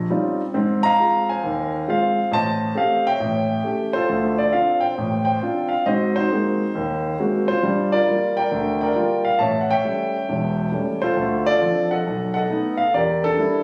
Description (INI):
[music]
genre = solo jazz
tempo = 136 BPM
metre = 4/4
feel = swing 66% on 8ths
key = D minor from 4.1 s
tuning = A4 = 441 Hz
[part]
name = warm concert grand piano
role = solo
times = 0.0-13.6 s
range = E1 to Bb5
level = -21 LUFS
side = equal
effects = none
[sound]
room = light reverb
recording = recorded on a phone in the room, studio reverb, compression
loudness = -21 LUFS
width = mono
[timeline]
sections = 0.0-4.1 A section; 4.1-13.6 B section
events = none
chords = 0.0 Eb13; 0.5 Ab6; 2.3 Am7b5; 3.2 A7; 4.1 Dm7; 5.9 G#9; 7.6 Gm7; 9.4 A7; 11.2 Dm7; 12.0 B7; 12.9 Em7b5